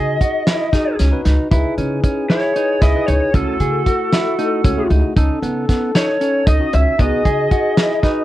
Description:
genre	progressive instrumental, band music in an uneven meter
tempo	230 BPM (eighths)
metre	7/8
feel	straight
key	unclear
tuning	A4 = 440 Hz
part	lead guitar through a small cranked amp	melody	0.0-8.2 s	A4 to E5	-19 LUFS	equal	overdrive
part	bright tine electric piano	accompaniment	0.0-8.2 s	A3 to B4	-25 LUFS	left 4 dB	none
part	mellow electric guitar	arpeggios	0.0-8.2 s	B3 to G#4	-23 LUFS	right 4 dB	none
part	upright bass	bass	0.0-7.5 s	C#2 to C#3	-18 LUFS	equal	transformer saturation
part	warm soul drum kit	drums	0.2-8.2 s	hi-hat, kick drum, snare drum	-17 LUFS	equal	none
part	breathy flugelhorn	second line	1.5-8.2 s	F#4 to A4	-24 LUFS	left 3 dB	none
room	light reverb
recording	worn, warbling old tape, cassette tape, warbly pitch drift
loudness	-14 LUFS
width	side -14 dB against mid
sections	0.0-8.2 A section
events	none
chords	0.0 Emaj7/C#; 1.5 C#m7; 3.3 F#m7/C#; 5.2 B7/C#; 7.0 Emaj7/C#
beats	0.21 0.47 0.73 0.99 1.25 | 1.52 1.78 2.04 2.30 2.56 2.82 3.08 | 3.34 3.60 3.87 4.13 4.39 4.65 4.91 | 5.17 5.43 5.69 5.95 6.21 6.47 6.73 | 6.99 7.25 7.51 7.77 8.04

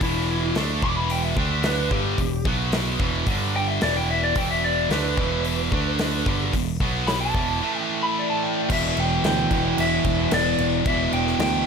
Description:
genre	hard rock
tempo	110 BPM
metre	4/4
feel	straight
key	E minor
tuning	A4 = 440 Hz
part	lightly driven lead guitar	melody	0.0-11.7 s	E4 to D6	-26 LUFS	left 1 dB	slapback echo
part	distorted electric guitar	riff	0.0-11.7 s	E2 to D4	-27 LUFS	right 14 dB	overdrive
part	high-gain distorted guitar	riff	0.0-11.7 s	E2 to D4	-28 LUFS	left 15 dB	distortion
part	picked electric bass	bass	0.0-11.6 s	E1 to D2	-27 LUFS	equal	none
part	big rock drum kit	drums	0.0-11.5 s	crash cymbal, hi-hat, kick drum, snare drum	-27 LUFS	equal	none
part	biting overdriven guitar	riff	8.7-11.7 s	E2 to E3	-26 LUFS	equal	none
room	light reverb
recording	none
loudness	-20 LUFS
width	side -6 dB against mid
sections	0.0-8.7 A section; 8.7-11.7 B section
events	lead electric guitar solo 0.0-8.7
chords	0.0 E5; 1.4 D5; 1.9 Em; 2.5 B5; 3.0 E5; 3.3 G5; 3.8 E5; 5.7 D5; 6.3 Em; 6.8 B5; 7.4 E5; 7.6 A5; 8.7 Em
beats	| 0.02 0.56 1.11 1.65 | 2.19 2.74 3.28 3.82 | 4.37 4.91 5.45 6.00 | 6.54 7.08 7.62 8.16 | 8.71 9.25 9.79 10.33 | 10.87 11.41

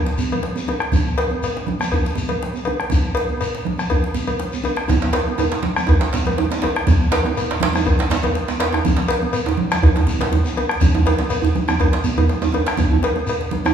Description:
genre	west african traditional, West African drum ensemble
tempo	121 BPM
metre	4/4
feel	swing 53% on 16ths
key	none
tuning	none
part	congas	percussion	0.1-13.7 s	none	-25 LUFS	right 2 dB	none
part	djembe	percussion	0.1-13.6 s	none	-24 LUFS	left 1 dB	none
part	shekere	percussion	0.1-13.7 s	none	-30 LUFS	left 2 dB	none
part	cowbell	percussion	0.3-13.4 s	none	-25 LUFS	left 1 dB	none
part	bombo	percussion	0.4-13.7 s	none	-21 LUFS	equal	none
part	djembe	percussion	4.9-13.7 s	none	-20 LUFS	right 4 dB	none
room	wet recital hall reverb, RT60 1.7 s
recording	recorded in a church or concert hall, small room ambience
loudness	-17 LUFS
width	side -8 dB against mid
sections	0.0-4.9 A section; 4.9-13.7 B section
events	none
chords	none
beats	0.43 | 0.92 1.42 1.92 2.41 | 2.91 3.40 3.90 4.39 | 4.89 5.38 5.88 6.37 | 6.87 7.36 7.86 8.35 | 8.84 9.34 9.83 10.32 | 10.81 11.31 11.80 12.29 | 12.78 13.28

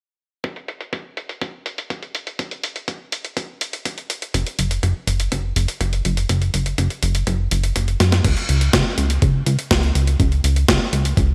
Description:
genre	italo disco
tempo	123 BPM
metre	4/4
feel	straight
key	unclear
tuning	A4 = 440 Hz
part	clean 12-bit digital drum machine	drums	0.4-11.3 s	crash cymbal, hi-hat, snare drum	-26 LUFS	equal	low-pass filter on hats, studio reverb, low-pass filter on snare, low-pass filter on cymbals
part	electronic kick drum	drums	0.4-11.3 s	none	-25 LUFS	equal	overdrive, high-pass filter on kick, studio reverb, high-pass filter on room
part	chorused synth bass	bass	4.3-11.3 s	Gb1 to Gb2	-21 LUFS	equal	tube saturation
room	light reverb, digital ambience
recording	bright 1980s-style digital production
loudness	-21 LUFS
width	mono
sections	0.4-8.2 A section; 8.2-11.3 B section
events	drum fill 8.0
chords	none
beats	| 0.44 0.93 1.42 1.90 | 2.39 2.88 3.37 3.85 | 4.34 4.83 5.32 5.81 | 6.29 6.78 7.27 7.76 | 8.24 8.73 9.22 9.71 | 10.20 10.68 11.17

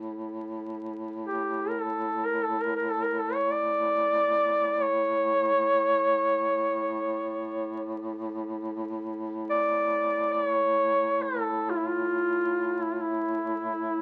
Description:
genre	caucasian folk, Caucasian lament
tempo	free time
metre	none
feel	none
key	A phrygian dominant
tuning	A4 = 440 Hz
part	mellow duduk	drone	0.0-14.0 s	A2	-36 LUFS	equal	none
part	warm duduk	melody	1.3-14.0 s	E4 to D5	-27 LUFS	equal	none
room	moderate studio reverb, RT60 0.6 s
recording	very old 78 rpm record, vinyl crackle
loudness	-28 LUFS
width	mono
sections	0.0-14.0 A section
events	none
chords	none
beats	free time

